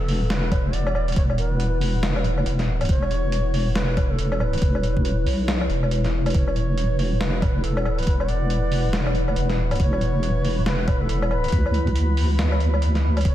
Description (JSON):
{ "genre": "deep dubstep", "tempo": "139 BPM", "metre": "4/4", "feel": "swing 61% on 16ths, half-time", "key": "unclear", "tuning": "A4 = 440 Hz", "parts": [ { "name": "bright reedy long shakuhachi", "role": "melody", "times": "0.0-13.3 s", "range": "A4 to D5", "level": "-32 LUFS", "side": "equal", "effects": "dub echo" }, { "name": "deep dark ambient pad", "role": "sustained chords", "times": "0.0-13.3 s", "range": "E4 to B5", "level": "-29 LUFS", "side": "equal", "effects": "chorus, built-in reverb" }, { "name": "deep soft wobble bass", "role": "bass", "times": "0.0-13.3 s", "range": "E1 to D2", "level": "-22 LUFS", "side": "equal", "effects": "chorus, tube saturation" }, { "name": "trip hop sampler-style drum kit", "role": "drums", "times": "0.1-13.3 s", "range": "hi-hat, snare drum, woodblock", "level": "-28 LUFS", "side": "equal", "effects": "none" }, { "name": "electronic kick drum", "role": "drums", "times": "0.5-13.3 s", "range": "none", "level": "-21 LUFS", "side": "equal", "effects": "overdrive" } ], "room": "light reverb", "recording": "none", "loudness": "-20 LUFS", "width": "side -12 dB against mid", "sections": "0.0-13.3 A section", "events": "none", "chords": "0.0 E5" }